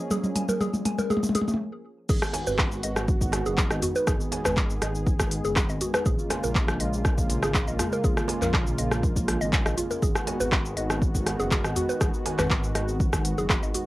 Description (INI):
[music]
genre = afro house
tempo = 121 BPM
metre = 4/4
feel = straight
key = G# dorian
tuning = A4 = 439 Hz
[part]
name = warm analog pad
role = sustained chords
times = 0.0-13.9 s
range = C#3 to G#4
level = -32 LUFS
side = equal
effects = chorus, sidechain pumping, cassette tape
[part]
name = mallet-like synth pluck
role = arpeggios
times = 0.1-13.8 s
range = E#4 to G#5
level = -30 LUFS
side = equal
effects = chorus, vintage 12-bit sampler grit, sidechain pumping, cassette tape, analog delay
[part]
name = afro-pop drum kit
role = drums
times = 0.1-13.8 s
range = crash cymbal, handclaps, hi-hat, rim click, shaker, toms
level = -28 LUFS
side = equal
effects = cassette tape
[part]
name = dark detuned saw bass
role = bass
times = 2.1-13.7 s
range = F#1 to A#1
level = -31 LUFS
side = equal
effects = sidechain pumping
[part]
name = electronic kick drum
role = drums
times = 2.1-13.6 s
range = none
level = -26 LUFS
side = equal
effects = overdrive, cassette tape
[part]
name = djembe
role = percussion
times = 2.3-13.9 s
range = none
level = -36 LUFS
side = right 3 dB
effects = none
[sound]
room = light reverb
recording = home recording on cassette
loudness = -23 LUFS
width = side -18 dB against mid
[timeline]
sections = 0.0-2.1 A section; 2.1-13.9 B section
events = build-up 0.0-2.1; drum fill 0.0-1.6; filter sweep on synth arpeggio sound 0.0-2.1; stop 1.6-2.1; drop 2.1-13.9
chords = 0.0 A#m7; 2.1 G#m7; 6.1 A#m7; 10.0 G#m7